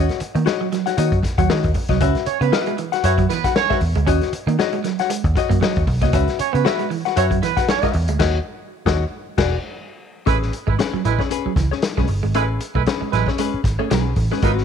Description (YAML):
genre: funk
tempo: 116 BPM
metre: 4/4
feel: swing 56% on 16ths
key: unclear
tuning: A4 = 440 Hz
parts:
  - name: vintage hollow-body jazz guitar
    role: accompaniment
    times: 0.0-14.6 s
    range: B#3 to F#5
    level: -23 LUFS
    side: left 14 dB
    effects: none
  - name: semi-hollow electric guitar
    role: riff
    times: 0.0-14.6 s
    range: E3 to C#4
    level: -26 LUFS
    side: right 14 dB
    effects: none
  - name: vintage muted picked electric bass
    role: bass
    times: 0.0-14.6 s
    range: E1 to D#3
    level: -20 LUFS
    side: right 1 dB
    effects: none
  - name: vintage drum kit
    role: drums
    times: 0.1-14.6 s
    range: crash cymbal, hi-hat, kick drum, snare drum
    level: -23 LUFS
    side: left 2 dB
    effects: none
  - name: mellow horn section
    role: second line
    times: 2.3-14.5 s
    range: F#3 to C#5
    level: -24 LUFS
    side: right 16 dB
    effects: none
room: light reverb, studio ambience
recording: 1960s-style stereo with parts hard left and right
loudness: -17 LUFS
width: side -7 dB against mid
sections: 0.0-10.3 A section; 10.3-14.6 B section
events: band accent 8.2-10.3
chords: 0.0 D#m7; 2.0 C#m7; 4.1 D#m7; 6.1 C#m7; 8.2 D#m7; 9.2 E9; 10.3 Amaj9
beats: 0.46 0.98 1.49 | 2.01 2.52 3.04 3.56 | 4.07 4.59 5.10 5.62 | 6.13 6.65 7.17 7.68 | 8.20 8.72 9.23 9.75 | 10.27 10.79 11.31 11.83 | 12.35 12.87 13.39 13.91 | 14.43